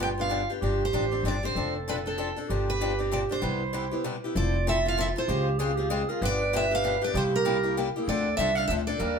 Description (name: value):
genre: acoustic string swing (jazz manouche)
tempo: 193 BPM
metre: 3/4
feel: swing 59% on 8ths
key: C major, F major from 4.4 s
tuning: A4 = 440 Hz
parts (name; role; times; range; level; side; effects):
- picked steel-string acoustic guitar; melody; 0.0-9.2 s; A4 to G5; -29 LUFS; right 2 dB; none
- growling clarinet; second line; 0.0-9.2 s; E4 to B4; -31 LUFS; right 5 dB; none
- picked steel-string acoustic guitar; accompaniment; 0.0-9.2 s; C3 to A4; -31 LUFS; left 4 dB; none
- upright bass; bass; 0.0-9.2 s; F1 to Eb2; -30 LUFS; left 1 dB; none
room: wet studio reverb, RT60 0.8 s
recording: band playing live in one room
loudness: -24 LUFS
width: side -6 dB against mid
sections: 0.0-4.4 A section; 4.4-9.2 B section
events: none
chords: 0.0 G7; 0.6 G7sus4; 1.6 F6; 2.5 G7sus4; 3.4 Cmaj7; 4.4 Fmaj7; 5.3 Dbmaj7; 6.2 G7; 7.1 C7; 8.1 Dm7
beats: 0.00 0.31 | 0.62 0.94 1.25 | 1.56 1.87 2.18 | 2.49 2.80 3.12 | 3.43 3.74 4.05 | 4.36 4.67 4.98 | 5.29 5.60 5.91 | 6.22 6.53 6.84 | 7.15 7.46 7.77 | 8.08 8.38 8.70 | 9.00